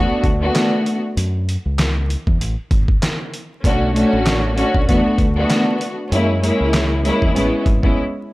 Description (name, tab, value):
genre	hip hop, boom-bap hip-hop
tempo	97 BPM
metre	4/4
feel	swing 58% on 16ths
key	unclear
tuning	A4 = 440 Hz
part	warm studio string section	accompaniment	0.0-8.0 s	G#3 to F#4	-17 LUFS	equal	cassette tape, high-pass filter, low-pass filter
part	deep dub fingered electric bass	bass	0.0-7.9 s	G#1 to F#2	-20 LUFS	equal	tube saturation
part	trip hop sampler-style drum kit	drums	0.2-8.0 s	handclaps, hi-hat, kick drum, snare drum	-19 LUFS	equal	none
room	digital ambience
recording	dry, gritty hardware recording, transformer saturation, vinyl crackle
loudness	-15 LUFS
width	side -19 dB against mid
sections	0.0-8.3 A section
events	break 1.2-3.6, 8.0-8.3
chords	0.0 E7sus4 (rootless); 1.2 F#5; 2.4 N.C.; 3.6 Bm7; 4.9 E7sus4 (rootless); 6.1 F#7; 7.4 Amaj7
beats	0.55 | 1.17 1.78 2.40 3.02 | 3.64 4.26 4.88 5.50 | 6.12 6.73 7.35